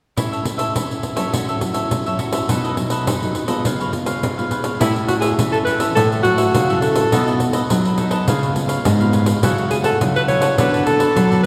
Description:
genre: samba and choro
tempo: 104 BPM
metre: 4/4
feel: straight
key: unclear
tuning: A4 = 440 Hz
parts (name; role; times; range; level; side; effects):
- cavaquinho; accompaniment; 0.2-11.5 s; D4 to F#5; -27 LUFS; equal; none
- nylon-string guitar; accompaniment; 0.2-11.5 s; F#2 to F#4; -27 LUFS; equal; none
- pandeiro; percussion; 0.2-11.5 s; none; -24 LUFS; equal; none
- breathy alto saxophone; melody; 4.8-11.5 s; E4 to C#5; -21 LUFS; equal; none
- nylon-string guitar; bass; 4.8-11.5 s; G#2 to F#3; -22 LUFS; equal; none
room: wet cathedral reverb, RT60 4.2 s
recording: recorded in a church or concert hall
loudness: -18 LUFS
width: mono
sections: 0.2-4.8 A section; 4.8-11.5 B section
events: none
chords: 0.2 F#m7/A; 2.5 B7; 3.6 C#7; 4.8 A; 6.0 F#m7/A; 7.1 B7; 8.3 C#7; 9.4 F#m7/C#; 10.6 Bm7/D

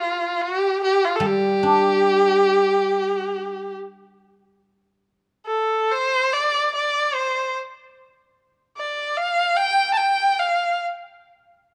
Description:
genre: chinese traditional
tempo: 72 BPM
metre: 4/4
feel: rubato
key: G shang mode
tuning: A4 = 440 Hz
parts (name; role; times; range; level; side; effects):
- clear erhu; melody; 0.0-10.8 s; F4 to A5; -21 LUFS; equal; none
- guzheng; accompaniment; 1.2-3.7 s; G3 to D4; -27 LUFS; equal; none
room: moderate recital hall reverb, RT60 1.8 s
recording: dark, warm production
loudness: -21 LUFS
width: mono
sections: 0.0-11.7 A section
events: none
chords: none

